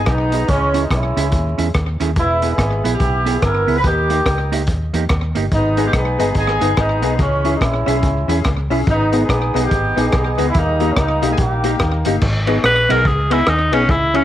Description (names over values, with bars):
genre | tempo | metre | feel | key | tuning
ska | 143 BPM | 4/4 | swing 62% on 8ths | G# harmonic minor | A4 = 442 Hz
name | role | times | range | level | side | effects
mellow horn section | melody | 0.0-12.2 s | E3 to B4 | -19 LUFS | equal | none
fingered electric bass | bass | 0.0-14.2 s | E1 to E2 | -20 LUFS | equal | none
crunchy breakbeat drum kit | drums | 0.1-14.2 s | crash cymbal, hi-hat, kick drum, ride cymbal, rim click | -21 LUFS | equal | slapback echo
hollow-body jazz guitar | accompaniment | 0.3-14.2 s | A#3 to G#4 | -24 LUFS | right 8 dB | none
honky-tonk upright piano | stabs | 5.8-14.2 s | A#3 to G#4 | -22 LUFS | left 9 dB | none
bright alto saxophone | melody | 12.7-14.2 s | C#4 to B4 | -15 LUFS | equal | none
room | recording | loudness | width
moderate spring reverb, RT60 1.3 s, studio ambience | 1960s-style stereo with parts hard left and right, vinyl crackle | -14 LUFS | side -12 dB against mid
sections
0.0-12.2 A section; 12.2-14.2 B section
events
alto saxophone solo 12.2-14.2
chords
0.5 C#m; 2.2 E; 3.8 D#; 5.5 G#m; 7.2 C#m; 8.9 G#m; 10.5 D#; 12.2 G#m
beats
0.07 | 0.49 0.91 1.33 1.75 | 2.17 2.59 3.01 3.42 | 3.84 4.26 4.68 5.10 | 5.52 5.94 6.36 6.78 | 7.20 7.62 8.03 8.45 | 8.87 9.29 9.71 10.13 | 10.55 10.96 11.38 11.80 | 12.22 12.64 13.06 13.47 | 13.89